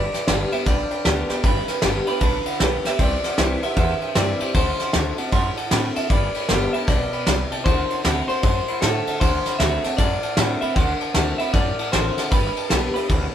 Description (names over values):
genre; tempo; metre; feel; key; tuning
rockabilly; 154 BPM; 4/4; swing 63% on 8ths; G major; A4 = 440 Hz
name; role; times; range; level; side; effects
electric guitar through a small old amp; melody; 0.0-13.3 s; A4 to F#5; -26 LUFS; right 1 dB; none
clear upright piano; accompaniment; 0.0-13.2 s; B4 to C6; -30 LUFS; right 4 dB; none
picked steel-string acoustic guitar; accompaniment; 0.0-13.3 s; G2 to G4; -28 LUFS; left 2 dB; none
upright bass; bass; 0.0-13.3 s; G1 to A2; -25 LUFS; equal; none
soft brush drum kit; drums; 0.1-13.2 s; kick drum, ride cymbal, snare drum; -22 LUFS; equal; none
room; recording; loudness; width
light reverb; band playing live in one room; -18 LUFS; side -10 dB against mid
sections
0.0-12.3 A section; 12.3-13.3 B section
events
none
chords
0.0 G; 3.0 C; 4.5 D7; 6.1 G; 7.7 D7; 12.3 G